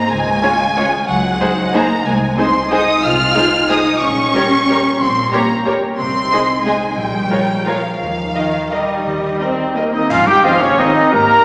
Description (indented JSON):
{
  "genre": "classical, orchestral ballroom waltz",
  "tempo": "160-200 BPM",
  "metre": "3/4",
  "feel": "rubato",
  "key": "Ab major",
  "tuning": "A4 = 440 Hz",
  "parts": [
    { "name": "rich studio violin section", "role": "melody", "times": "0.0-10.9 s", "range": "Eb5 to F6", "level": "-20 LUFS", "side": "equal", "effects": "none" },
    { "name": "concert harp", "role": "arpeggios", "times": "0.0-11.4 s", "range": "Ab2 to Bb5", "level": "-26 LUFS", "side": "equal", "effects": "none" },
    { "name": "warm studio cello section", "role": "bass", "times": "0.0-11.4 s", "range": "Db3 to F4", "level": "-22 LUFS", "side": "equal", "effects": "none" },
    { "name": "dark studio double bass section", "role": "bass", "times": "0.1-11.4 s", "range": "Ab1 to Eb2", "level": "-30 LUFS", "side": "equal", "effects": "none" },
    { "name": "rich studio violin section", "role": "second line", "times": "0.4-11.4 s", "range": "F4 to Bb5", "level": "-24 LUFS", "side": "equal", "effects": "none" },
    { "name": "rich symphonic viola section", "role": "accompaniment", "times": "0.4-10.9 s", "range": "Eb3 to C5", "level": "-25 LUFS", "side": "equal", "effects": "none" },
    { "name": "cymbal swell, clash cymbals and concert bass drum", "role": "percussion", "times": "8.0-10.7 s", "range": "none", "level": "-35 LUFS", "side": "equal", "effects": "none" },
    { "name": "bright silver concert flute", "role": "second line", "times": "9.9-11.4 s", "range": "Db5 to Bb5", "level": "-22 LUFS", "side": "equal", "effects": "none" },
    { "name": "warm clarinet", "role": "second line", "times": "9.9-11.4 s", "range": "Bb3 to G4", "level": "-23 LUFS", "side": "equal", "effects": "none" },
    { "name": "clear trumpet", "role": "stabs", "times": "9.9-11.4 s", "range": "Db4 to Bb4", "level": "-15 LUFS", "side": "equal", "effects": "none" },
    { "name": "bright oboe", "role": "second line", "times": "10.4-10.9 s", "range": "Eb5", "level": "-27 LUFS", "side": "equal", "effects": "none" },
    { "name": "mellow bassoon", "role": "accompaniment", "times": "10.4-10.9 s", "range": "C4", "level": "-27 LUFS", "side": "equal", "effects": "none" },
    { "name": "dark French horn section", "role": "sustained chords", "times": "10.4-10.9 s", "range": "C4 to Eb4", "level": "-28 LUFS", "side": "equal", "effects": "none" },
    { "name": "warm trombone section", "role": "sustained chords", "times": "10.4-10.9 s", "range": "Eb3 to Ab3", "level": "-31 LUFS", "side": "equal", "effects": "none" }
  ],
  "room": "wet concert hall reverb, RT60 2.1 s",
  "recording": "none",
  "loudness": "-15 LUFS",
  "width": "mono",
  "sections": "0.0-10.1 A section; 10.1-11.4 B section",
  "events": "band accent 10.1-10.4",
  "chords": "0.1 Db; 1.1 Ab7/Db; 2.1 Ab/C; 4.0 Gdim/Bb; 6.0 Ab/C; 7.0 Bbm7; 8.0 Eb; 10.1 Ab",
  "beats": "| 0.11 0.43 0.77 | 1.08 1.40 1.74 | 2.05 2.38 2.71 | 3.03 3.35 3.69 | 4.01 4.34 4.68 | 5.00 5.32 5.66 | 5.98 6.31 6.65 | 6.97 7.31 7.66 | 8.00 8.35 8.71 | 9.05 9.40 9.76 | 10.10 10.44 10.78 | 11.13"
}